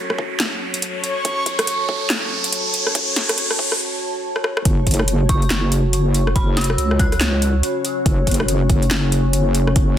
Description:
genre	deep dubstep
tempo	141 BPM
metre	4/4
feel	swing 61% on 16ths, half-time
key	F# minor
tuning	A4 = 438 Hz
part	deep dark ambient pad	sustained chords	0.0-10.0 s	C#4 to A5	-25 LUFS	left 1 dB	chorus, built-in reverb
part	riser	sound effects	0.0-3.8 s	none	-23 LUFS	right 1 dB	none
part	backwards swelling texture	texture	0.0-3.8 s	C#5	-27 LUFS	equal	built-in reverb
part	deep house drum kit	drums	0.1-9.9 s	handclaps, hi-hat, rim click, snare drum	-22 LUFS	equal	overdrive, studio reverb
part	electronic kick drum	drums	0.2-9.9 s	none	-19 LUFS	equal	overdrive, high-pass filter on kick, studio reverb
part	wobble bass	bass	4.7-10.0 s	F#1 to C#2	-18 LUFS	equal	chorus
part	dark detuned synth bell	melody	5.3-7.4 s	B5 to F#6	-30 LUFS	left 1 dB	chorus, dub echo
room	light reverb, digital ambience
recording	dense, heavily limited modern master, high-pass filter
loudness	-16 LUFS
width	side -10 dB against mid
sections	0.0-4.7 A section; 4.7-10.0 B section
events	build-up 0.0-4.7; riser 0.0-3.8; filter sweep on ambient pad 0.0-4.7; break 3.8-4.7; drum fill 4.3-4.7; drop 4.7-10.0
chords	0.0 F#5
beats	0.40 0.82 | 1.25 1.68 2.10 2.53 | 2.95 3.38 3.80 4.23 | 4.65 5.08 5.50 5.93 | 6.36 6.78 7.21 7.63 | 8.06 8.48 8.91 9.34 | 9.76

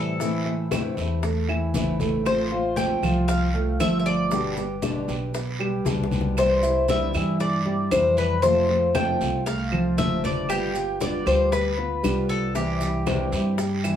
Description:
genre	latin, Cuban son and guajira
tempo	117 BPM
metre	4/4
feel	straight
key	C major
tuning	A4 = 440 Hz
part	Cuban tres	melody	0.0-14.0 s	G4 to G5	-25 LUFS	left 1 dB	none
part	fingerpicked old ladder-braced acoustic guitar	accompaniment	0.0-14.0 s	B2 to G4	-29 LUFS	left 3 dB	none
part	dark baby grand piano	arpeggios	0.0-14.0 s	E3 to G5	-28 LUFS	right 2 dB	none
part	upright bass	bass	0.0-14.0 s	G1 to A2	-28 LUFS	equal	none
part	bongos	percussion	0.2-13.8 s	none	-33 LUFS	left 6 dB	none
part	congas	percussion	0.2-14.0 s	none	-34 LUFS	left 3 dB	none
part	guiro	percussion	0.2-14.0 s	none	-39 LUFS	right 3 dB	none
part	maracas	percussion	0.2-14.0 s	none	-41 LUFS	right 4 dB	none
part	claves	percussion	0.7-14.0 s	none	-34 LUFS	right 4 dB	none
room	moderate studio ambience, RT60 0.5 s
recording	none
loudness	-21 LUFS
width	side -9 dB against mid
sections	0.0-14.0 A section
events	drum fill 5.9-6.4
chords	0.2 Am; 2.3 F/A; 4.3 G; 6.4 C; 8.4 F; 10.5 G7; 12.6 C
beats	| 0.20 0.72 1.23 1.75 | 2.26 2.77 3.29 3.80 | 4.32 4.83 5.34 5.86 | 6.37 6.89 7.40 7.92 | 8.43 8.95 9.46 9.98 | 10.49 11.01 11.52 12.04 | 12.55 13.07 13.58

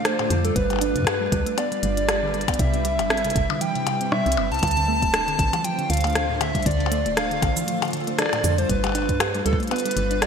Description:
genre	IDM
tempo	118 BPM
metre	4/4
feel	swing 56% on 16ths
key	D dorian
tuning	A4 = 443 Hz
part	warbly nostalgic lead	melody	0.0-10.3 s	A4 to A5	-25 LUFS	equal	chorus, digital delay
part	granular cloud pad	sustained chords	0.0-10.3 s	G3 to D5	-29 LUFS	equal	built-in reverb
part	thumb-piano-like synth pluck	arpeggios	0.1-10.3 s	A2 to G4	-29 LUFS	right 4 dB	chorus, ping-pong delay
part	glitchy drum kit	drums	0.1-10.3 s	hi-hat, percussion blips, rim click, shaker	-26 LUFS	left 2 dB	studio reverb, gated reverb
part	woody FM bass	bass	0.3-10.3 s	D1 to G2	-26 LUFS	equal	none
part	electronic kick drum	drums	0.6-9.6 s	none	-26 LUFS	equal	studio reverb
room	moderate lush hall reverb, RT60 2.5 s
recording	bright 1980s-style digital production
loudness	-20 LUFS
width	side -6 dB against mid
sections	0.0-10.3 A section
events	none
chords	0.0 Dm7; 0.6 G7; 2.6 Cmaj7; 4.6 Dm7; 8.7 G7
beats	0.05 | 0.56 1.07 1.58 2.08 | 2.59 3.10 3.61 4.12 | 4.63 5.14 5.64 6.15 | 6.66 7.17 7.68 8.19 | 8.70 9.20 9.71 10.22

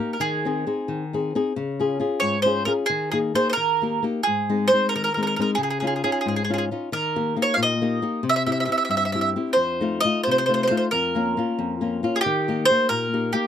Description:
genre	italian folk, Italian serenade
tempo	90 BPM (dotted quarters)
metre	6/8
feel	straight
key	Ab major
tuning	A4 = 438 Hz
part	bowl-back mandolin	melody	0.0-13.5 s	G4 to F5	-22 LUFS	right 2 dB	none
part	flamenco guitar	accompaniment	0.0-13.5 s	F2 to Ab4	-24 LUFS	left 4 dB	none
room	little or no reverb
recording	close, detailed microphones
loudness	-20 LUFS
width	side -9 dB against mid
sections	0.0-13.5 A section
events	none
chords	0.2 Ab/Eb; 1.5 Db; 2.9 Ebsus4; 3.6 Eb; 4.2 Ab; 5.6 Dbadd9; 6.9 Eb; 8.3 C; 9.6 F7; 10.9 Bbm/F; 12.3 Eb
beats	| 0.20 0.88 | 1.55 2.22 | 2.89 3.56 | 4.24 4.92 | 5.59 6.25 | 6.92 7.58 | 8.25 8.92 | 9.59 10.27 | 10.93 11.60 | 12.26 12.92

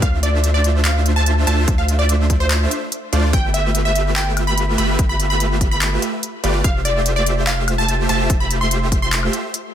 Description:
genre	future bass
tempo	145 BPM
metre	4/4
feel	half-time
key	unclear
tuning	A4 = 439 Hz
part	wide unison pluck	melody	0.0-9.7 s	C5 to C6	-23 LUFS	equal	sidechain pumping, tape echo
part	supersaw chords	riff	0.0-9.3 s	A3 to E5	-22 LUFS	right 1 dB	cassette tape, sidechain pumping, ping-pong delay
part	saturated sub bass	bass	0.0-9.3 s	F1 to D2	-18 LUFS	equal	sidechain pumping
part	electronic kick drum	drums	0.0-9.0 s	none	-18 LUFS	equal	none
part	trap drum kit	drums	0.0-9.6 s	handclaps, hi-hat, woodblock	-22 LUFS	left 1 dB	none
room	light reverb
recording	dense, heavily limited modern master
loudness	-15 LUFS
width	side -10 dB against mid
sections	0.0-9.7 A section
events	none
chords	0.0 Dm9; 3.3 G13; 6.6 Fmaj9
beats	| 0.02 0.44 0.85 1.26 | 1.68 2.09 2.51 2.92 | 3.33 3.75 4.16 4.58 | 4.99 5.40 5.82 6.23 | 6.64 7.06 7.47 7.88 | 8.30 8.71 9.13 9.54

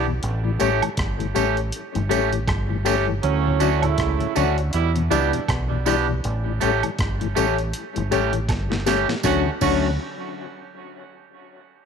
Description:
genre	roots reggae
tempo	80 BPM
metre	4/4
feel	swing 58% on 16ths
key	D major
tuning	A4 = 439 Hz
part	electric guitar at the edge of break-up	accompaniment	0.0-9.9 s	A3 to G4	-26 LUFS	right 12 dB	dub echo
part	mellow reed electric piano	stabs	0.0-9.9 s	D4 to D5	-27 LUFS	left 12 dB	fast tremolo
part	deep dub fingered electric bass	bass	0.0-10.0 s	G1 to E2	-24 LUFS	equal	none
part	mellow tonewheel organ	accompaniment	0.1-9.9 s	D2 to D4	-28 LUFS	left 10 dB	chorus vibrato, slow rotary speaker, dub echo
part	breakbeat sampler-style drum kit	drums	0.2-9.8 s	crash cymbal, hi-hat, kick drum, rim click, snare drum	-27 LUFS	equal	none
part	tambourine and woodblock	percussion	0.6-10.0 s	none	-32 LUFS	right 12 dB	none
part	warm horn section	second line	3.2-9.9 s	A2 to F#4	-27 LUFS	right 12 dB	dub echo
room	light reverb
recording	1960s-style stereo with parts hard left and right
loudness	-19 LUFS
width	side -6 dB against mid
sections	0.0-9.2 A section; 9.2-11.9 B section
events	drum fill 8.5-9.2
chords	0.2 A7; 3.2 Dmaj7; 4.7 Em7; 6.2 A7; 9.2 Dmaj7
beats	| 0.23 0.98 1.73 2.48 | 3.23 3.98 4.73 5.48 | 6.23 6.99 7.74 8.49 | 9.24

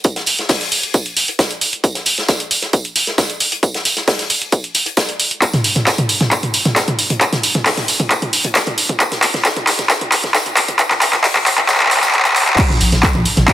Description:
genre	driving peak-time techno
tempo	134 BPM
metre	4/4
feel	straight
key	unclear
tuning	A4 = 440 Hz
part	electronic kick drum	drums	0.0-13.5 s	none	-17 LUFS	equal	high-pass filter on kick
part	punchy analog drum machine	drums	0.0-13.5 s	crash cymbal, handclaps, hi-hat, toms	-14 LUFS	equal	none
part	unplugged drum kit	drums	0.0-13.5 s	hi-hat, snare drum, tambourine	-22 LUFS	equal	high-pass filter on hats, high-pass filter on snare, high-pass filter on perc, high-pass filter on room
part	saturated sub bass	bass	12.7-13.5 s	Bb1	-16 LUFS	equal	overdrive, sidechain pumping, low-pass filter
room	moderate stone room reverb, RT60 1.2 s, small room ambience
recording	heavily compressed radio sound, multiband compression, high-pass filter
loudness	-13 LUFS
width	side -13 dB against mid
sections	0.0-12.6 A section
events	build-up 0.0-12.6; drum fill 5.4-12.6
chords	none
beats	| 0.05 0.49 0.94 1.39 | 1.84 2.29 2.73 3.18 | 3.63 4.08 4.52 4.97 | 5.42 5.87 6.32 6.76 | 7.21 7.66 8.11 8.55 | 9.00 9.45 9.90 10.35 | 10.79 11.24 11.69 12.14 | 12.58 13.03 13.48

